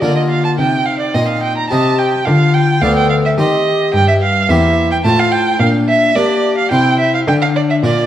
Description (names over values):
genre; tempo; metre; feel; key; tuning
classical, baroque-style sonata movement with continuo; 108 BPM; 3/4; straight; unclear; A4 = 440 Hz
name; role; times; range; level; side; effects
mellow hollow tenor recorder; melody; 0.0-8.1 s; D4 to A4; -18 LUFS; left 3 dB; none
rich violin; second line; 0.0-8.1 s; D5 to Bb5; -15 LUFS; right 3 dB; none
harpsichord; accompaniment; 0.0-8.1 s; D2 to Eb5; -18 LUFS; left 2 dB; none
rich cello; bass; 0.0-8.1 s; D2 to Bb3; -18 LUFS; equal; none
room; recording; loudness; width
wet recital hall reverb, RT60 1.4 s; worn, warbling old tape, cassette tape, warbly pitch drift; -11 LUFS; side -11 dB against mid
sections
0.0-8.1 A section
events
none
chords
0.0 Bb/D; 0.6 Cm; 2.3 Bdim/D; 3.4 Cm/Eb; 3.9 C7/G; 5.0 F/A; 5.6 Gm/Bb; 6.7 C; 7.3 Bb/D